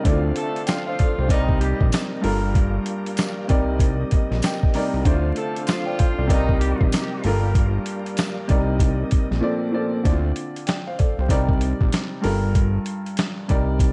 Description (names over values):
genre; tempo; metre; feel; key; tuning
hip hop, boom-bap hip-hop; 96 BPM; 4/4; swing 61% on 16ths; C dorian; A4 = 440 Hz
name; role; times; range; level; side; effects
warm baby grand piano; accompaniment; 0.0-13.9 s; G2 to Bb5; -28 LUFS; equal; high-pass filter, low-pass filter
tonewheel organ; sustained chords; 0.0-10.0 s; C3 to F4; -34 LUFS; equal; fast rotary speaker, high-pass filter, low-pass filter
boom bap sampler-style drum kit; drums; 0.0-13.9 s; hi-hat, kick drum, snare drum; -23 LUFS; equal; none
fat analog bass; bass; 0.1-13.9 s; G1 to D2; -25 LUFS; equal; none
warm horn section; stabs; 0.4-6.9 s; Eb3 to A4; -32 LUFS; equal; high-pass filter, low-pass filter, digital delay
tambourine; percussion; 0.7-8.4 s; none; -43 LUFS; equal; none
room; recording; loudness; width
light reverb, small room ambience; vinyl crackle, nothing above 11.0 kHz; -22 LUFS; mono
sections
0.0-10.1 A section; 10.1-13.9 B section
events
drums muted 9.4-10.1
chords
0.1 Dm7; 1.3 Cm7; 2.2 Gm7; 3.5 Cm7; 5.1 Dm7; 6.3 Cm7; 7.2 Gm7; 8.5 Cm7; 9.4 Bbmaj9; 10.1 Dm7; 11.3 Cm7; 12.2 Gm7